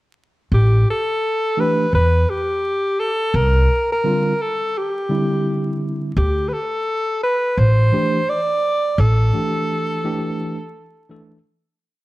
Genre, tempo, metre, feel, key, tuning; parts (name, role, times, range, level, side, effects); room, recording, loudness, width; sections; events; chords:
hip hop, jazz-hop; 85 BPM; 4/4; swing 61% on 16ths; A minor; A4 = 440 Hz
breathy alto saxophone; melody; 0.5-11.5 s; G4 to D5; -20 LUFS; equal; slapback echo
upright bass; bass; 0.5-9.3 s; A1 to E2; -15 LUFS; equal
mellow tine electric piano; accompaniment; 1.6-11.4 s; D3 to A4; -22 LUFS; equal; overdrive, medium stereo tremolo
light reverb, studio reverb; dark, warm production, vinyl crackle; -16 LUFS; side -18 dB against mid
0.5-11.8 A section
fade-out 9.0-11.8
0.5 A7sus4; 3.3 Csus2; 6.2 A7sus4